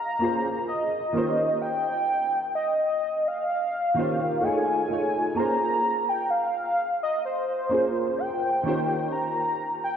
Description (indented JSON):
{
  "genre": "R&B",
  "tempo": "64 BPM",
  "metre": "4/4",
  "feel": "swing 54% on 16ths",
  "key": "Bb dorian",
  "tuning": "A4 = 441 Hz",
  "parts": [
    { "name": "warm velvety synth lead", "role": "melody", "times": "0.0-10.0 s", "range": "C5 to Bb5", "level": "-25 LUFS", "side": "equal", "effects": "chorus, diffuse ambient delay" },
    { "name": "dark concert grand piano", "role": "accompaniment", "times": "0.0-10.0 s", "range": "Eb3 to C#5", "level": "-27 LUFS", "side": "right 1 dB", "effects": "ensemble chorus" }
  ],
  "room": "wet lush hall reverb, RT60 2.6 s",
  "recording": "dreamy mix soaked in reverb",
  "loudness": "-23 LUFS",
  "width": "side -8 dB against mid",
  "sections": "0.0-10.0 A section",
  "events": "none",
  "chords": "0.0 Bbm9; 1.1 Eb13; 4.4 F7alt; 5.4 Bbm9; 8.6 Eb13"
}